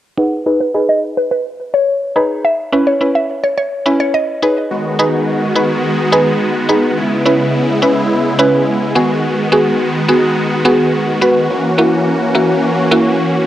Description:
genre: pop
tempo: 106 BPM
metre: 4/4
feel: straight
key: B major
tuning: A4 = 441 Hz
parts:
  - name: mallet-like synth pluck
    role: melody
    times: 0.2-4.5 s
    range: B4 to F#5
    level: -16 LUFS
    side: left 1 dB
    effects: chorus, phaser, low-pass filter, cassette tape, tape echo
  - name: mallet-like synth pluck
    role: accompaniment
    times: 0.2-13.3 s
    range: A#3 to B4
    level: -14 LUFS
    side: equal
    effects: chorus, low-pass filter, cassette tape
  - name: supersaw chords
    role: sustained chords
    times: 4.7-13.5 s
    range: C#3 to F#4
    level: -14 LUFS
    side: equal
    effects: cassette tape
room: wet spring reverb, RT60 2.5 s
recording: home recording on cassette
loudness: -12 LUFS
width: side -12 dB against mid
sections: 0.2-4.7 A section; 4.7-13.5 B section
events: filter sweep 0.2-4.7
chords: 0.2 B6; 2.4 C#m7; 4.4 B6; 7.0 C#m7; 9.0 G#m7; 11.5 F#7

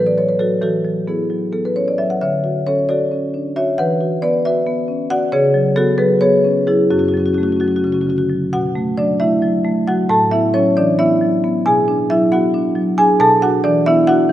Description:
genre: classical, contemporary piece for solo marimba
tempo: 268 BPM (eighths)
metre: 7/8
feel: straight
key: F# minor, B minor from 8.5 s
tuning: A4 = 440 Hz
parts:
  - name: marimba with medium mallets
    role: solo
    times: 0.0-14.3 s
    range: F#2 to A5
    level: -14 LUFS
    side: equal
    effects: none
room: moderate scoring stage reverb, RT60 1.9 s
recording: none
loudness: -14 LUFS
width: side -12 dB against mid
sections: 0.0-8.5 A section; 8.5-14.3 B section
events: none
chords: 0.0 A69; 0.6 Eadd9; 2.2 Dmaj9; 3.8 Esus2; 5.3 C#7sus4; 6.9 F#m; 8.5 Bm7; 10.1 A69; 11.7 Bm6; 13.2 D69/B

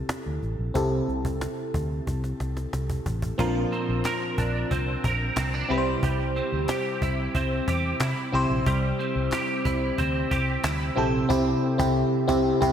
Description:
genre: 1980s-style pop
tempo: 91 BPM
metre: 4/4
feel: straight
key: unclear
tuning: A4 = 442 Hz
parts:
  - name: FM electric piano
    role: accompaniment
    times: 0.0-12.7 s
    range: Bb2 to C5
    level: -26 LUFS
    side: left 1 dB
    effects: chorus, phaser, shimmer reverb
  - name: cajon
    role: drums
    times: 0.1-12.7 s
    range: none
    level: -32 LUFS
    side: equal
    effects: none
  - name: vintage muted fingered electric bass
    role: bass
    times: 0.3-12.7 s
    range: A1 to C3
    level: -28 LUFS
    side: equal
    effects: none
  - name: twelve-string electric guitar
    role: riff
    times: 3.4-11.8 s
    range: F3 to Bb4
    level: -29 LUFS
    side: right 3 dB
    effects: ensemble chorus, digital delay, shimmer reverb
  - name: group handclap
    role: percussion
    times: 4.0-10.8 s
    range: none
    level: -43 LUFS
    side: left 2 dB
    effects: none
room: wet lush hall reverb, RT60 2.3 s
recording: bright 1980s-style digital production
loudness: -23 LUFS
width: side -9 dB against mid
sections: 0.0-3.4 A section; 3.4-12.7 B section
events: drum fill 2.1-3.4; band accent 11.3-12.7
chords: 0.0 C6; 3.4 Bbadd9; 5.7 C

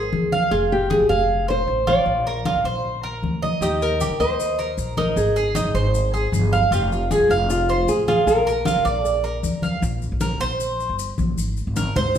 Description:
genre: latin, Cuban son and guajira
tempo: 155 BPM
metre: 4/4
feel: straight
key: unclear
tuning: A4 = 440 Hz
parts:
  - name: nylon-string guitar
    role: melody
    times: 0.0-9.4 s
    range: F4 to D5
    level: -23 LUFS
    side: left 1 dB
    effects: none
  - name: Cuban tres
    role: arpeggios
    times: 0.0-12.2 s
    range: Eb4 to F5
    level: -22 LUFS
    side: right 2 dB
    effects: none
  - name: upright bass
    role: bass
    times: 0.0-12.2 s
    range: F1 to F2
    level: -25 LUFS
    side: equal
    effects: none
  - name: congas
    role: percussion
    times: 0.1-12.2 s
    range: none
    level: -28 LUFS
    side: left 2 dB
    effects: none
  - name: maracas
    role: percussion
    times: 3.6-12.2 s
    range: none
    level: -37 LUFS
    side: left 7 dB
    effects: none
room: wet large studio reverb, RT60 1.2 s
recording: band playing live in one room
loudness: -18 LUFS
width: side -9 dB against mid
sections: 0.0-9.8 A section; 9.8-12.2 B section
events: Cuban tres solo 9.8-12.2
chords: 0.0 Ab5; 0.5 Fm; 2.1 Bbadd9; 3.6 Eb5; 5.2 Ab; 6.7 Fm; 8.3 Bb; 9.8 Gmadd11; 11.4 Ab

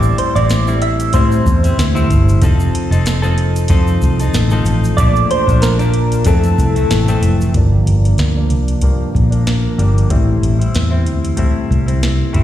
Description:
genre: indie pop, bedroom pop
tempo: 94 BPM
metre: 4/4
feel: swing 55% on 16ths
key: G dorian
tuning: A4 = 440 Hz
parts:
  - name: soft electric-piano-like synth keys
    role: melody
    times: 0.0-7.2 s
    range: A4 to E5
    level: -18 LUFS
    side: right 1 dB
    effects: analog chorus, slapback echo
  - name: direct-recorded clean electric guitar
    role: accompaniment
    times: 0.0-12.4 s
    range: F2 to A4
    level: -20 LUFS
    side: left 2 dB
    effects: lush chorus, warbly pitch drift, low-pass filter, slapback echo
  - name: vintage muted fingered electric bass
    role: bass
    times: 0.0-12.4 s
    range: F1 to A2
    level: -14 LUFS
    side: equal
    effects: none
  - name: egg shaker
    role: percussion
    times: 0.0-7.5 s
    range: none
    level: -37 LUFS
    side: right 4 dB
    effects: slapback echo
  - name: soft vintage rhythm box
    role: drums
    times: 0.2-12.4 s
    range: hi-hat, kick drum, snare drum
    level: -18 LUFS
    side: equal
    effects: none
room: little or no reverb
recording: live gig heard through the venue's PA, recital hall reverb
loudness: -12 LUFS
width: side -12 dB against mid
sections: 0.0-7.5 A section; 7.5-12.4 B section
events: filter sweep on clean electric guitar 7.5-12.4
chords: 0.0 Am7; 2.4 F7; 5.0 Bbmaj7; 6.3 Fmaj7; 7.5 Gm7; 10.1 Am7

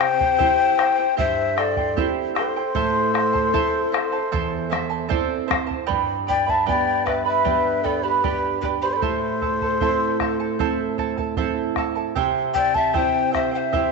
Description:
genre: andean folk, Andean ensemble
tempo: 76 BPM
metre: 4/4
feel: straight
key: A minor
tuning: A4 = 440 Hz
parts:
  - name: breathy large quena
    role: melody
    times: 0.0-13.9 s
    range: B4 to A5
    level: -22 LUFS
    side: left 4 dB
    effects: none
  - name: polished pan flute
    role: second line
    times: 0.0-13.9 s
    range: G4 to E5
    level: -26 LUFS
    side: left 9 dB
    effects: none
  - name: charango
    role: accompaniment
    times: 0.0-13.9 s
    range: E4 to B5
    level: -26 LUFS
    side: right 9 dB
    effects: none
  - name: nylon-string guitar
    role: accompaniment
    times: 0.0-13.9 s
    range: E2 to E5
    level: -27 LUFS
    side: right 10 dB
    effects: none
  - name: bombo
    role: percussion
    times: 0.0-13.9 s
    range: none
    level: -28 LUFS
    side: left 1 dB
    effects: none
room: wet echo chamber reverb, RT60 2.1 s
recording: 1960s-style stereo with parts hard left and right, nothing above 7.9 kHz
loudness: -19 LUFS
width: side -3 dB against mid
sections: 0.0-5.9 A section; 5.9-13.9 B section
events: nylon-string guitar fill 4.3-5.9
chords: 0.0 C; 2.8 Am; 5.9 G; 9.0 Am; 12.2 C

